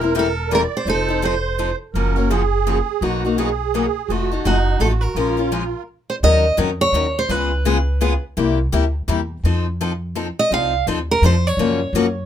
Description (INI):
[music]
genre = acoustic string swing (jazz manouche)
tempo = 168 BPM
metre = 3/4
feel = swing 61% on 8ths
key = unclear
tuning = A4 = 438 Hz
[part]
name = musette accordion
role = second line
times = 0.0-5.8 s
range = Eb4 to D5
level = -23 LUFS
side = right 10 dB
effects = none
[part]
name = picked steel-string acoustic guitar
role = accompaniment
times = 0.0-12.1 s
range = B2 to Bb4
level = -21 LUFS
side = left 5 dB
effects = none
[part]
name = upright bass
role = bass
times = 0.0-12.2 s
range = E1 to Gb2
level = -21 LUFS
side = equal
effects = none
[part]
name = picked steel-string acoustic guitar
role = melody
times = 0.2-1.8, 4.5-8.2, 10.4-12.3 s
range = Gb4 to F5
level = -20 LUFS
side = right 2 dB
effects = none
[sound]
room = light reverb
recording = minimal, uncompressed stereo recording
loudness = -17 LUFS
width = side -10 dB against mid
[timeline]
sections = 0.0-6.2 A section; 6.2-12.3 B section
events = stop 5.9-6.2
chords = 0.0 C7/E; 0.9 F7; 1.9 Gbmaj9; 3.0 Bmaj7; 4.1 F7b9; 5.2 Bbm7; 6.2 Ebm7; 7.3 Db7; 8.4 C7; 9.4 F7; 11.6 Gbmaj7